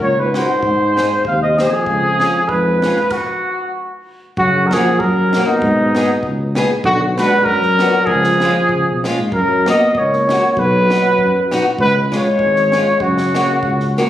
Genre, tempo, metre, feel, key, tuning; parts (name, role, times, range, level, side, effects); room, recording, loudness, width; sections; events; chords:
alpine folk, alpine dance band; 96 BPM; 2/4; swing 55% on 8ths, rubato; F# major; A4 = 440 Hz
mellow trumpet; melody; 0.0-14.0 s; D#4 to E#5; -15 LUFS; equal
dark euphonium; second line; 0.0-14.0 s; E#2 to B3; -21 LUFS; right 2 dB
mellow tuba; bass; 0.0-14.0 s; G#1 to C#3; -21 LUFS; equal
compact cocktail drum kit; drums; 0.0-14.1 s; crash cymbal, kick drum, snare drum; -28 LUFS; equal
picked old ladder-braced acoustic guitar; accompaniment; 0.4-14.1 s; G#3 to A#4; -21 LUFS; left 2 dB
moderate recital hall reverb, RT60 1.8 s; recorded on a phone in the room, studio reverb, compression; -13 LUFS; side -12 dB against mid
0.0-4.4 A section; 4.4-14.1 B section
stop 3.1-4.4
0.0 F#; 0.6 G#; 1.9 C#7; 3.1 N.C.; 4.4 F#; 5.6 G#m; 6.8 Bm; 8.1 C#; 9.3 F#; 10.6 B; 11.8 C#; 13.0 F#